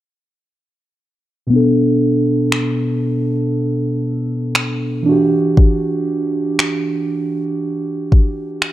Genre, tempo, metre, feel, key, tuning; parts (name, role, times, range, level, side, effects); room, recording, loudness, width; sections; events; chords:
contemporary R&B; 59 BPM; 4/4; swing 54% on 16ths; B minor; A4 = 440 Hz
muted felt-like synth keys; accompaniment; 1.5-8.7 s; B2 to A4; -16 LUFS; right 1 dB; chorus, low-pass filter
smooth R&B drum kit; drums; 2.5-8.7 s; finger snaps, kick drum; -13 LUFS; left 1 dB
light reverb; -15 LUFS; side -14 dB against mid
1.5-8.7 A section
filter sweep on synth keys 1.5-8.7
1.5 Bm7; 5.1 Em9